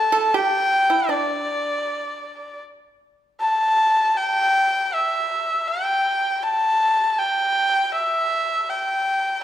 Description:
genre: chinese traditional, Chinese chamber ensemble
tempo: 79 BPM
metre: 4/4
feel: rubato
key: unclear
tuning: A4 = 439 Hz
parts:
  - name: rich erhu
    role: melody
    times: 0.0-9.4 s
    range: D5 to A5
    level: -19 LUFS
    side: equal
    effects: none
  - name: pipa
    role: second line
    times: 0.0-2.6 s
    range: D4 to A4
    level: -25 LUFS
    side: right 5 dB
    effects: none
room: moderate recital hall reverb, RT60 1.5 s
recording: minimal, uncompressed stereo recording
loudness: -18 LUFS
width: side -11 dB against mid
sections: 0.0-9.4 A section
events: none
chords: none

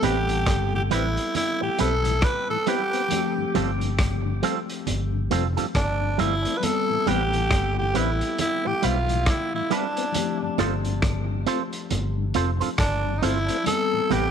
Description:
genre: lovers rock reggae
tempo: 68 BPM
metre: 4/4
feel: swing 60% on 16ths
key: A minor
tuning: A4 = 440 Hz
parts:
  - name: growling tenor saxophone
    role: melody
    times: 0.0-14.3 s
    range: D4 to B4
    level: -26 LUFS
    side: right 1 dB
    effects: tape echo
  - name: mellow tine electric piano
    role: accompaniment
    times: 0.0-14.3 s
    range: F3 to A4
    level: -32 LUFS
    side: left 14 dB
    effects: slow stereo tremolo
  - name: mellow tonewheel organ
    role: accompaniment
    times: 0.0-14.2 s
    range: G2 to C4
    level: -33 LUFS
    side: left 12 dB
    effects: chorus vibrato, slow rotary speaker
  - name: electric guitar with an envelope filter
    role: stabs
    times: 0.0-14.3 s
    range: G3 to C5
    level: -28 LUFS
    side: right 12 dB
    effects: none
  - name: vintage muted fingered electric bass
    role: bass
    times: 0.0-14.3 s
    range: F1 to B1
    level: -26 LUFS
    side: equal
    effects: none
  - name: vintage drum kit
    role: drums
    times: 0.0-14.3 s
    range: hi-hat, kick drum, rim click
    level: -28 LUFS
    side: equal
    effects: none
  - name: congas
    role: percussion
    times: 0.0-14.3 s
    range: none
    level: -35 LUFS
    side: right 9 dB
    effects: tape echo
room: light reverb, small room ambience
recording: 1960s-style stereo with parts hard left and right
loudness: -21 LUFS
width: side -8 dB against mid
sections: 0.0-14.3 A section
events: none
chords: 0.0 Am9; 3.1 G9sus4; 6.6 Am9; 10.1 G9sus4; 13.7 Am9

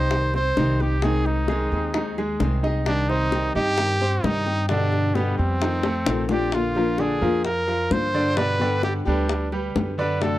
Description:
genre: latin, Cuban son and guajira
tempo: 131 BPM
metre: 4/4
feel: straight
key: C harmonic minor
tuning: A4 = 440 Hz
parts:
  - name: clear trumpet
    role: melody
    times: 0.0-10.4 s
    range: B3 to C5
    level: -25 LUFS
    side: equal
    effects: none
  - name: nylon-string guitar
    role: accompaniment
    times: 0.0-10.4 s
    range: B2 to Ab4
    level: -28 LUFS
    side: left 3 dB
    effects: none
  - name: bright grand piano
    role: arpeggios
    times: 0.0-10.4 s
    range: D3 to Eb5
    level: -27 LUFS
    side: right 2 dB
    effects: none
  - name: upright bass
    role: bass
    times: 0.0-10.4 s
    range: Bb1 to G2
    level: -26 LUFS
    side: equal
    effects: none
  - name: bongos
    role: percussion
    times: 0.1-10.4 s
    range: none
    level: -27 LUFS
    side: left 4 dB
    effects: none
room: small room ambience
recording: dry, close 1970s-style studio recording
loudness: -20 LUFS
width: side -15 dB against mid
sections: 0.0-6.5 A section; 6.5-10.4 B section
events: drum fill 5.8-6.5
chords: 0.0 Cm; 1.0 Ab/C; 2.9 Cm; 4.7 G; 5.6 F7; 6.5 Bb; 8.4 G

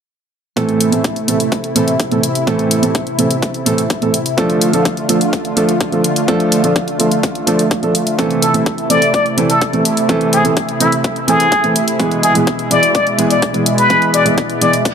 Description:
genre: EDM, festival progressive house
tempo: 126 BPM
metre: 4/4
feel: straight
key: A harmonic minor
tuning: A4 = 440 Hz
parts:
  - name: warm concert grand piano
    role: accompaniment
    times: 0.6-14.7 s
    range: A2 to A4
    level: -16 LUFS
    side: right 2 dB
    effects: sidechain pumping, dub echo
  - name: lush unison pad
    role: sustained chords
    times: 0.6-14.9 s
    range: B2 to F4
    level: -18 LUFS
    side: equal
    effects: chorus, sidechain pumping
  - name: electronic hi-hat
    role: drums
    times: 0.6-14.9 s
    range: none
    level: -20 LUFS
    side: left 1 dB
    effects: studio ambience
  - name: electronic kick drum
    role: drums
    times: 0.6-14.9 s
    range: none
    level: -20 LUFS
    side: left 2 dB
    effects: overdrive, high-pass filter on kick, studio ambience
  - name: trumpet with plunger mute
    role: melody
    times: 8.4-14.7 s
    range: E4 to D5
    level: -15 LUFS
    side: left 2 dB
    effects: dub echo
  - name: reverse cymbal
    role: sound effects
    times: 14.9 s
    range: none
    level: -27 LUFS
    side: right 2 dB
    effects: none
room: moderate lush hall reverb, RT60 2.5 s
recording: none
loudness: -12 LUFS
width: side -7 dB against mid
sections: 0.6-14.9 A section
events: none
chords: 0.6 Am; 4.4 Dm; 8.2 Am/C; 12.0 E

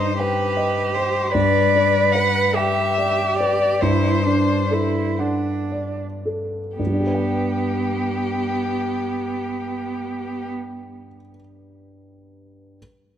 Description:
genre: classical, slow romantic movement for piano quartet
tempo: 35-52 BPM (dotted quarters)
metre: 6/8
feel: rubato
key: G major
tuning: A4 = 439 Hz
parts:
  - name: rich violin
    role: melody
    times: 0.0-10.5 s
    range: G4 to F#5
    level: -23 LUFS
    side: left 4 dB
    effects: none
  - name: rich cello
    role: second line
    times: 0.0-10.5 s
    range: B3 to B4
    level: -23 LUFS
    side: right 6 dB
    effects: none
  - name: warm concert grand piano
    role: accompaniment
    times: 0.0-12.8 s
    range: G2 to G5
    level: -23 LUFS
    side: left 1 dB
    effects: none
room: moderate concert hall reverb, RT60 2.3 s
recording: close, detailed microphones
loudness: -18 LUFS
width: side -10 dB against mid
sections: 0.0-6.8 A section; 6.8-9.8 B section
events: slowing down 0.2-6.8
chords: 0.0 Cm/G; 1.3 G; 3.8 D7/G; 6.8 G

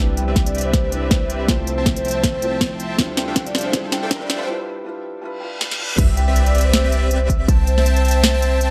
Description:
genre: future bass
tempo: 160 BPM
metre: 4/4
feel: swing 56% on 16ths, half-time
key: C major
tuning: A4 = 440 Hz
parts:
  - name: felt-muted upright piano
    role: accompaniment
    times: 0.0-6.0 s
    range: G3 to C5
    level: -31 LUFS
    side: equal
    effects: sidechain pumping, dub echo
  - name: airy breathy pad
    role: sustained chords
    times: 0.0-4.5 s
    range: C3 to E5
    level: -37 LUFS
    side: equal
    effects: none
  - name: big bright polysynth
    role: riff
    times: 0.0-8.7 s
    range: C4 to A5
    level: -29 LUFS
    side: equal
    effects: sidechain pumping
  - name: warm 808-style bass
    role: bass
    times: 0.0-8.7 s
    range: C2 to D2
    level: -22 LUFS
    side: equal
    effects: sidechain pumping
  - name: riser, reverse cymbal and sub drop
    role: sound effects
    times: 3.2-7.5 s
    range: none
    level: -33 LUFS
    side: equal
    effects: none
  - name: vibraphone with soft mallets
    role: melody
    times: 0.2-8.7 s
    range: C5 to G5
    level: -27 LUFS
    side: equal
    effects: sidechain pumping, low-pass filter, digital delay
  - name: trap drum kit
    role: drums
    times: 0.2-8.7 s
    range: crash cymbal, hi-hat, snare drum, toms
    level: -24 LUFS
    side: equal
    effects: overdrive
  - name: electronic kick drum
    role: drums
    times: 0.4-7.6 s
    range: none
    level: -21 LUFS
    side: equal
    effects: none
  - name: airy dreamy lead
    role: arpeggios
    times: 6.0-8.7 s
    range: E5 to A5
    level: -32 LUFS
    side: equal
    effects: chorus, sidechain pumping, dub echo
room: light reverb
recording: high-pass filter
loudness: -19 LUFS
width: mono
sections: 0.0-6.0 A section; 6.0-8.7 B section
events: build-up 0.0-6.0; drum fill 0.0-4.5, 5.6-6.0; filter sweep on vibraphone 0.0-6.0; filter sweep 0.0-6.0; break 4.5-6.0; reverse cymbal 5.4-6.0; drop 6.0-8.7; impact 6.0-7.5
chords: 0.0 Cmaj9; 1.5 Fmaj7/C; 3.0 Dm11; 4.5 G7; 6.0 Cmaj9; 7.5 C6

